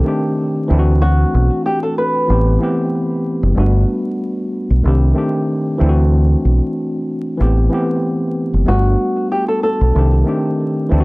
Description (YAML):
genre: hip hop, boom-bap hip-hop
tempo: 94 BPM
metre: 4/4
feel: swing 54% on 16ths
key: G major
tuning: A4 = 440 Hz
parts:
  - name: flamenco guitar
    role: melody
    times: 0.0-3.5, 8.7-11.0 s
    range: F#4 to B4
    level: -20 LUFS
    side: equal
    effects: high-pass filter, low-pass filter, tape echo
  - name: mellow tine electric piano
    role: accompaniment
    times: 0.0-11.0 s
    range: Eb3 to G4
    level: -18 LUFS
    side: equal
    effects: medium stereo tremolo, cassette tape, high-pass filter, low-pass filter
  - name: deep dub fingered electric bass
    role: bass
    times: 0.7-11.0 s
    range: F#1 to D2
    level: -13 LUFS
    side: equal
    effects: none
room: studio reverb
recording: dry, gritty hardware recording, transformer saturation, vinyl crackle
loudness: -14 LUFS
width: side -24 dB against mid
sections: 0.0-11.0 A section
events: none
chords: 0.0 Cm6; 0.7 D7; 2.3 Am9; 3.6 Gmaj7; 4.8 Cm6; 5.8 D7; 7.4 Am9; 8.7 Gmaj7; 10.0 Cm6